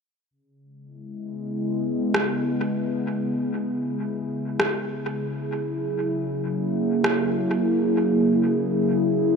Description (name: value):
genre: ambient dub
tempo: free time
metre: none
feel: none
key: C# dorian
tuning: A4 = 440 Hz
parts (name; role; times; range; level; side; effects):
- warbly tape-like pad; sustained chords; 0.3-9.4 s; C#3 to G#4; -23 LUFS; equal; chorus, built-in reverb, phaser
- electronic rim click; drums; 2.1-7.2 s; none; -27 LUFS; equal; overdrive, dub echo
room: moderate huge ambient reverb, RT60 4.7 s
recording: none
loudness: -22 LUFS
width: side -5 dB against mid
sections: 0.3-9.4 A section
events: filter sweep on ambient pad 0.3-9.4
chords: 0.3 C#m7; 5.2 F#9